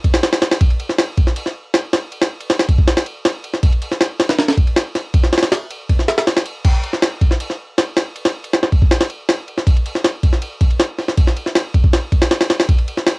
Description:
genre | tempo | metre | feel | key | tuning
drum and bass | 159 BPM | 4/4 | straight | none | none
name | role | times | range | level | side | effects
jungle sampler-style drum kit | drums | 0.0-13.2 s | crash cymbal, kick drum, ride cymbal, snare drum | -14 LUFS | equal | none
room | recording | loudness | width
moderate booth ambience, RT60 0.2 s | home recording on cassette | -14 LUFS | side -26 dB against mid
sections
0.0-6.6 A section; 6.6-13.2 A section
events
drop 0.0-6.6, 6.6-13.2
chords
none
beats
0.23 | 0.61 0.99 1.36 1.74 | 2.12 2.50 2.88 3.25 | 3.63 4.01 4.38 4.76 | 5.14 5.52 5.89 6.27 | 6.65 7.03 7.40 7.78 | 8.16 8.54 8.91 9.29 | 9.67 10.04 10.42 10.80 | 11.18 11.55 11.93 12.31 | 12.69 13.06

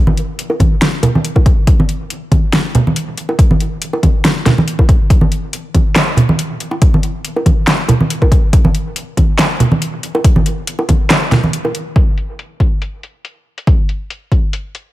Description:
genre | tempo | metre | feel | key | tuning
dubstep | 140 BPM | 4/4 | swing 54% on 16ths, half-time | none | none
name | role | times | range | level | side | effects
congas and bongos | percussion | 0.1-11.7 s | none | -16 LUFS | right 2 dB | dub echo
deep house drum kit | drums | 0.2-14.8 s | handclaps, hi-hat, snare drum | -16 LUFS | equal | overdrive, low-pass filter on hats, small room ambience, low-pass filter on snare
electronic kick drum | drums | 0.6-14.4 s | none | -11 LUFS | equal | overdrive, small room ambience
room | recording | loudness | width
light reverb, digital ambience | none | -11 LUFS | side -16 dB against mid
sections
0.0-12.0 A section; 12.0-14.9 B section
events
kick drops out 11.1-12.0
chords
none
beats
0.39 0.82 1.25 | 1.67 2.10 2.53 2.96 | 3.39 3.82 4.25 4.67 | 5.10 5.53 5.96 6.39 | 6.82 7.25 7.67 8.10 | 8.53 8.96 9.39 9.82 | 10.24 10.67 11.10 11.53 | 11.96 12.39 12.82 13.24 | 13.67 14.10 14.53

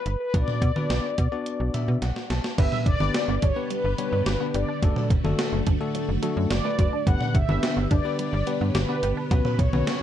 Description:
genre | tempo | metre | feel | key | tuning
synth-pop | 107 BPM | 4/4 | straight | unclear | A4 = 440 Hz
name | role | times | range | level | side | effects
mellow synth brass | melody | 0.0-10.0 s | B4 to F#5 | -30 LUFS | left 1 dB | chorus, tape echo
slap-like FM bass | bass | 0.1-9.8 s | F#1 to B2 | -26 LUFS | right 1 dB | none
gated 80s digital drum machine | drums | 0.1-10.0 s | crash cymbal, hi-hat, kick drum, snare drum, toms | -24 LUFS | equal | gated reverb, gated reverb snare
bell-like tine electric piano | accompaniment | 0.3-10.0 s | A3 to A5 | -31 LUFS | left 5 dB | none
string machine, full ensemble | sustained chords | 2.6-10.0 s | C#3 to G4 | -31 LUFS | equal | ensemble chorus
resonant blip pluck | arpeggios | 2.6-10.0 s | F#3 to G4 | -34 LUFS | equal | phaser, tape echo
room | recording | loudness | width
little or no reverb | dark, warm production | -22 LUFS | side -11 dB against mid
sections
0.0-2.6 A section; 2.6-10.0 B section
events
tine electric piano fill 1.5-2.6; drum fill 2.0-2.6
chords
0.3 Bm; 2.6 G; 4.8 D/F#; 7.1 G; 9.3 Bsus2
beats
| 0.34 0.90 1.46 2.02 | 2.58 3.14 3.70 4.26 | 4.83 5.39 5.95 6.51 | 7.07 7.63 8.19 8.75 | 9.31 9.87

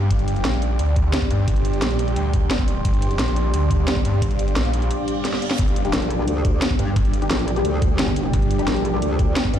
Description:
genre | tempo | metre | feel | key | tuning
dark technical drum and bass | 175 BPM | 4/4 | straight | G minor | A4 = 442 Hz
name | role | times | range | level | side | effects
deep dark ambient pad | sustained chords | 0.0-9.6 s | G3 to C6 | -27 LUFS | equal | chorus, built-in reverb, sidechain pumping
snarling distorted saw bass | bass | 0.0-8.7 s | G1 to G2 | -21 LUFS | equal | distortion, overdrive
ethereal airy pad | texture | 0.0-9.6 s | G4 to C6 | -29 LUFS | right 1 dB | ensemble chorus, built-in reverb, phaser, sidechain pumping
drum and bass drum kit | drums | 0.1-9.6 s | hi-hat, snare drum | -25 LUFS | equal | none
electronic kick drum | drums | 0.1-9.5 s | none | -21 LUFS | equal | none
reverse cymbal | sound effects | 5.0-5.6 s | none | -34 LUFS | right 6 dB | none
filtered dub chord stab | stabs | 5.8-9.6 s | G3 to G4 | -29 LUFS | left 6 dB | phaser, lush chorus, ping-pong delay
metallic wobble bass | bass | 5.9-9.6 s | G1 to G2 | -23 LUFS | equal | chorus
room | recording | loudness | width
light reverb, digital ambience | played on a big sound system in a bare room, large studio reverb | -18 LUFS | side -10 dB against mid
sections
0.0-9.6 A section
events
break 4.9-5.6; reverse cymbal 5.0-5.6; drum fill 5.2-5.6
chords
0.0 G5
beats
| 0.11 0.45 0.79 1.14 | 1.48 1.82 2.16 2.51 | 2.85 3.19 3.54 3.88 | 4.22 4.56 4.91 5.25 | 5.59 5.93 6.28 6.62 | 6.96 7.31 7.65 7.99 | 8.34 8.68 9.02 9.36

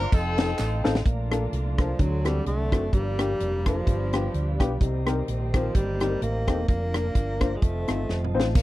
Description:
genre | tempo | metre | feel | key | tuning
uptempo gospel | 128 BPM | 4/4 | swing 56% on 8ths | Bb major | A4 = 436 Hz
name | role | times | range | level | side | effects
warm horn section | melody | 0.0-1.0 s | C4 to Bb4 | -30 LUFS | left 2 dB | none
mellow tonewheel organ | sustained chords | 0.0-8.6 s | A3 to D6 | -36 LUFS | right 2 dB | slow rotary speaker
fingered electric bass | bass | 0.0-8.6 s | E1 to D2 | -28 LUFS | right 1 dB | none
tight funk drum kit | drums | 0.1-8.6 s | crash cymbal, hi-hat, kick drum, ride cymbal, rim click, snare drum, toms | -24 LUFS | equal | none
tambourine and handclaps | percussion | 0.1-0.9, 8.6 s | none | -44 LUFS | right 4 dB | none
dark upright piano | accompaniment | 0.4-8.6 s | G2 to C5 | -30 LUFS | left 4 dB | none
warm studio string section | sustained chords | 1.1-8.6 s | D3 to F4 | -37 LUFS | right 2 dB | none
breathy tenor saxophone | melody | 1.8-8.4 s | F3 to Bb3 | -31 LUFS | equal | none
room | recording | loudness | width
small room ambience | dry, close 1970s-style studio recording | -23 LUFS | side -16 dB against mid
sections
0.0-1.1 A section; 1.1-8.6 B section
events
drum fill 0.6-1.1, 8.1-8.6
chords
0.1 F7; 1.1 Bbmaj7; 2.0 D7; 2.9 Gm7; 3.9 G7; 4.8 Cm7; 6.7 Bb/F; 7.6 F7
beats
0.12 0.59 | 1.05 1.52 1.99 2.46 | 2.93 3.40 3.87 4.34 | 4.81 5.28 5.75 6.21 | 6.68 7.15 7.62 8.09 | 8.55

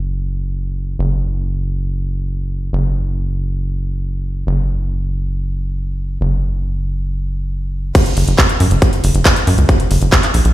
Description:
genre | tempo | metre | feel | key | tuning
psychedelic trance | 138 BPM | 4/4 | straight | unclear | A4 = 439 Hz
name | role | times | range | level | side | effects
tight sequencer bass | bass | 0.0-10.5 s | F#1 to F#2 | -16 LUFS | equal | none
big-room dance drum kit | drums | 8.0-10.5 s | crash cymbal, handclaps, hi-hat | -18 LUFS | equal | none
electronic kick drum | drums | 8.0-10.2 s | none | -12 LUFS | equal | none
room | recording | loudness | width
little or no reverb | played on a big sound system in a bare room, stone room reverb, low-pass filter | -15 LUFS | side -15 dB against mid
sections
0.0-8.0 A section; 8.0-10.5 B section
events
filter sweep 0.0-8.0; drop 8.0-10.5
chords
none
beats
0.12 0.56 | 0.99 1.43 1.86 2.30 | 2.73 3.17 3.60 4.04 | 4.47 4.91 5.34 5.78 | 6.21 6.65 7.08 7.51 | 7.95 8.38 8.82 9.25 | 9.69 10.12

